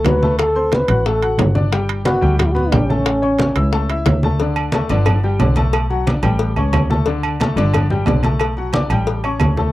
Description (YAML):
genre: latin, salsa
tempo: 180 BPM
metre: 4/4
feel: straight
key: D major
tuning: A4 = 441 Hz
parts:
  - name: dark trombone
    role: melody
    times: 0.0-4.1 s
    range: C#4 to B4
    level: -18 LUFS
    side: equal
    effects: none
  - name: clear baby grand piano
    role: accompaniment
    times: 0.0-9.7 s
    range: D3 to F#6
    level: -22 LUFS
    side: left 3 dB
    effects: none
  - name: bright double bass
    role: bass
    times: 0.0-9.7 s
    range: G1 to D2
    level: -18 LUFS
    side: equal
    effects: none
  - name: timbales and agogo bells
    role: percussion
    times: 0.0-9.6 s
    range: none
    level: -25 LUFS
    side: right 6 dB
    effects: none
  - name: bongos and cowbell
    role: percussion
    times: 0.1-9.6 s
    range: none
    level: -25 LUFS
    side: left 6 dB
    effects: none
  - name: congas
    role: percussion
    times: 0.1-9.7 s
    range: none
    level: -22 LUFS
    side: equal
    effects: none
room: light reverb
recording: dry, close 1970s-style studio recording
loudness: -14 LUFS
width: side -16 dB against mid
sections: 0.0-4.4 A section; 4.4-9.7 B section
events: none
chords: 0.4 D7; 1.7 Gmaj7; 3.1 A; 4.4 D5; 5.1 G; 5.7 Bm7; 6.4 A7; 7.1 D5; 7.7 G; 8.4 Bm7; 9.1 A7